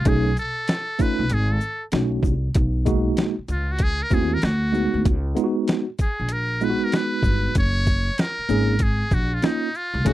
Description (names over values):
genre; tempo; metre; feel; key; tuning
hip hop, jazz-hop; 96 BPM; 4/4; swing 65% on 16ths; F# major; A4 = 442 Hz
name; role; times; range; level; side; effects
trumpet with metal mute; melody; 0.0-10.1 s; D#4 to C#5; -26 LUFS; equal; none
upright bass; bass; 0.0-10.1 s; F#1 to D#2; -23 LUFS; equal; none
tine electric piano; accompaniment; 0.1-10.1 s; G#3 to G#4; -23 LUFS; right 1 dB; overdrive, fast stereo tremolo
boom bap sampler-style drum kit; drums; 0.1-10.1 s; hi-hat, kick drum, shaker, snare drum; -22 LUFS; equal; none
room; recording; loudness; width
little or no reverb; dry, close 1970s-style studio recording; -20 LUFS; side -15 dB against mid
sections
0.0-10.1 A section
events
muted trumpet solo 0.0-10.1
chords
0.1 B13; 1.9 B7; 2.6 Emaj9#11/B; 4.4 D; 5.1 C#7sus4 (rootless); 7.6 F#69